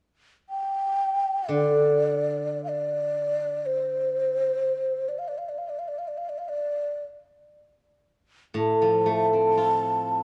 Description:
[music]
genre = chinese traditional, Chinese chamber ensemble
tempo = free time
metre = none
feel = none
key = D yu mode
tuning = A4 = 440 Hz
[part]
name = breathy mellow low xiao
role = melody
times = 0.5-10.2 s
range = C5 to A5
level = -28 LUFS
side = equal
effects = none
[part]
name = steel-string zither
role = accompaniment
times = 1.5-4.5, 8.5-10.2 s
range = A2 to F4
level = -26 LUFS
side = equal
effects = none
[sound]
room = wet concert hall reverb, RT60 1.7 s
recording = worn, warbling old tape, cassette tape, warbly pitch drift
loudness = -26 LUFS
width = mono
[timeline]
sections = 0.0-10.2 A section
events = none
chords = none

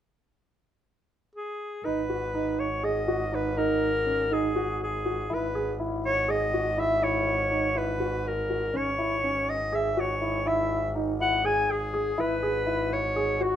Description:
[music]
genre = contemporary instrumental, chamber music in an uneven meter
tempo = 244 BPM (eighths)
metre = 7/8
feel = straight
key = G# minor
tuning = A4 = 440 Hz
[part]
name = bright clarinet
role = melody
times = 1.4-13.6 s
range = F#4 to G#5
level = -27 LUFS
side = left 1 dB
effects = none
[part]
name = dark grand piano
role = arpeggios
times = 1.8-13.6 s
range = C#4 to G#4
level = -29 LUFS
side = right 1 dB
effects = none
[part]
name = rich double bass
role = bass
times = 1.9-13.6 s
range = G#1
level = -33 LUFS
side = equal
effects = none
[sound]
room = moderate studio reverb, RT60 0.8 s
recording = minimal, uncompressed stereo recording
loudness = -25 LUFS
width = side -10 dB against mid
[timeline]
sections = 0.1-1.8 A section; 1.8-13.6 B section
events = none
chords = 0.1 N.C.; 1.8 G#m9; 5.3 F#9sus4/G#; 8.7 E6/G#; 12.2 F#9sus4/G# (rootless)

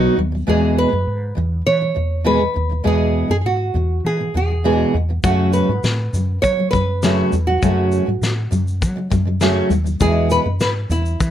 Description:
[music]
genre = acoustic pop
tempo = 101 BPM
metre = 4/4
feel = straight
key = E major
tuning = A4 = 440 Hz
[part]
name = fingerpicked steel-string acoustic guitar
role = accompaniment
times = 0.0-11.2 s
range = E2 to G#4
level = -19 LUFS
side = equal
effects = none
[part]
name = woody fretless electric bass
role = bass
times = 0.0-11.3 s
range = D#2 to F#3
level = -20 LUFS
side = equal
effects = none
[part]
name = nylon-string guitar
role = melody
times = 0.5-11.3 s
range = E4 to C#5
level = -21 LUFS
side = right 1 dB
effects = slapback echo, plate reverb
[part]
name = loose indie drum kit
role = drums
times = 5.2-11.3 s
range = kick drum, shaker, snare drum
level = -22 LUFS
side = left 2 dB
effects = none
[sound]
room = little or no reverb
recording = close, detailed microphones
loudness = -16 LUFS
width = side -10 dB against mid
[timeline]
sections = 0.0-11.3 A section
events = none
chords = 0.5 E; 5.2 F#m; 10.0 E

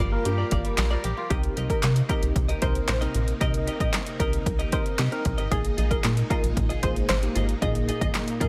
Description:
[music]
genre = dance-pop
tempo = 114 BPM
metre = 4/4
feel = straight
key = C minor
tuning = A4 = 439 Hz
[part]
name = string machine, violins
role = sustained chords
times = 0.0-8.5 s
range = Bb2 to G4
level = -38 LUFS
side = equal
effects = ensemble chorus, sidechain pumping
[part]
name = kora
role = arpeggios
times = 0.0-2.7 s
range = G3 to F5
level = -38 LUFS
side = equal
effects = sidechain pumping, dub echo
[part]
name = direct-recorded clean electric guitar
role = riff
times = 0.0-8.5 s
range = F4 to Eb5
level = -38 LUFS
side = equal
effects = lush chorus
[part]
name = plucky analog bass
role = bass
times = 0.0-8.5 s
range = G1 to C3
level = -28 LUFS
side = equal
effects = sidechain pumping
[part]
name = tine electric piano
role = accompaniment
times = 0.1-8.5 s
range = Bb3 to Bb4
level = -35 LUFS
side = equal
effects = sidechain pumping
[part]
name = deep house drum kit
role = drums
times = 0.3-8.5 s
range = handclaps, hi-hat, kick drum, snare drum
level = -29 LUFS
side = equal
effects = overdrive
[part]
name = group handclap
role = percussion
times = 0.8-8.3 s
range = none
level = -39 LUFS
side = equal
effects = none
[part]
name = unison pluck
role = melody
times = 1.3-8.5 s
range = G4 to Eb5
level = -35 LUFS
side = equal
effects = sidechain pumping, dub echo
[sound]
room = digital ambience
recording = none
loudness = -25 LUFS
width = mono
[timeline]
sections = 0.0-1.3 A section; 1.3-8.5 B section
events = none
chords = 0.0 Gm7; 1.3 Cm7; 5.5 Bb7sus4

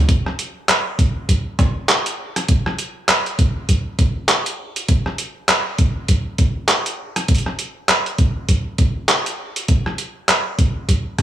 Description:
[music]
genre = glitch hop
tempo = 100 BPM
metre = 4/4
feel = swing 59% on 16ths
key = none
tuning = none
[part]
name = boom bap sampler-style drum kit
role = drums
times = 0.1-11.2 s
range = handclaps, hi-hat, rim click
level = -18 LUFS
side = right 1 dB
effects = studio reverb
[part]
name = electronic kick drum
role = drums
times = 0.1-11.2 s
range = none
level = -16 LUFS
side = equal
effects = studio reverb
[sound]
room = light reverb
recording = small room ambience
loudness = -16 LUFS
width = side -12 dB against mid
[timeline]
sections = 0.0-11.2 A section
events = none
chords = none

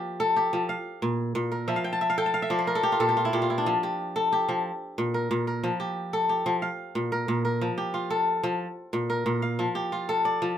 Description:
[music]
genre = west african traditional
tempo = 121 BPM (dotted quarters)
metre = 12/8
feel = straight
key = F major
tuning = A4 = 444 Hz
[part]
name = kora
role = solo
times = 0.0-10.6 s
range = Bb2 to A5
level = -24 LUFS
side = left 1 dB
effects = none
[sound]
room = moderate small room reverb, RT60 0.5 s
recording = minimal, uncompressed stereo recording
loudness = -24 LUFS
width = side -10 dB against mid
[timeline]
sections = 0.0-7.6 A section; 7.6-10.6 B section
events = kora fill 1.7-3.7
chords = 0.0 F; 0.7 Bb5; 1.7 F; 2.7 N.C.; 3.7 F; 4.6 N.C.; 5.6 F; 6.6 Bb5; 7.6 F; 8.6 Bb5; 9.6 F

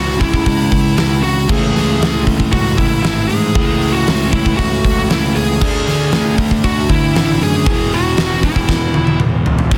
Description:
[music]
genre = hard rock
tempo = 117 BPM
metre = 4/4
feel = straight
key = E mixolydian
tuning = A4 = 440 Hz
[part]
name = high-gain lead guitar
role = melody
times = 0.0-9.2 s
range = E4 to G#4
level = -21 LUFS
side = equal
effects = distortion
[part]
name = crunchy overdriven guitar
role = riff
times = 0.0-9.8 s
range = E2 to D4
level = -21 LUFS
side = equal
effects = none
[part]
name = fuzz picked electric bass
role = bass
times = 0.0-9.8 s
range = E1 to G#2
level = -21 LUFS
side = equal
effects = overdrive
[part]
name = huge arena drum kit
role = drums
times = 0.2-9.8 s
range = crash cymbal, hi-hat, kick drum, snare drum, toms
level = -19 LUFS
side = equal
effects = none
[sound]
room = studio reverb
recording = dense, heavily limited modern master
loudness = -14 LUFS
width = mono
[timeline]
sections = 0.0-9.7 A section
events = drum fill 8.7-9.7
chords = 0.0 C#m; 1.5 A; 5.6 D5; 7.7 E5

